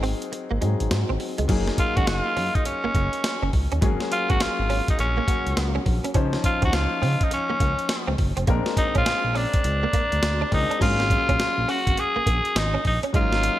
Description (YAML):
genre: R&B, new jack swing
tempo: 103 BPM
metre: 4/4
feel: swing 64% on 16ths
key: unclear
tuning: A4 = 440 Hz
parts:
  - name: warm concert grand piano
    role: accompaniment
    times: 0.0-13.6 s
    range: F3 to C5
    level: -30 LUFS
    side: left 4 dB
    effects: none
  - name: direct-recorded clean electric guitar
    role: riff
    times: 0.0-13.5 s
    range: Gb3 to D4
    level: -32 LUFS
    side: right 4 dB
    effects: ensemble chorus
  - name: smooth gliding synth bass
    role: bass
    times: 0.0-13.5 s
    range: F1 to Db3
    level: -25 LUFS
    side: equal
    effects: none
  - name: breakbeat sampler-style drum kit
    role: drums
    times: 0.0-13.6 s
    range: crash cymbal, hi-hat, kick drum, snare drum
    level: -25 LUFS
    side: equal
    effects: gated reverb
  - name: raspy tenor saxophone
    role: melody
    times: 1.8-13.6 s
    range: Db4 to Ab4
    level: -24 LUFS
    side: equal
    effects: none
room: light reverb, digital ambience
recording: bright 1980s-style digital production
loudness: -20 LUFS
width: side -14 dB against mid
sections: 0.0-1.5 A section; 1.5-10.8 B section; 10.8-13.6 C section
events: break 0.0-1.5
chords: 0.0 Ab7; 1.5 Gb69; 3.8 Ab9sus4; 6.2 Dbmaj9; 8.5 Bb9; 10.8 Ab9sus4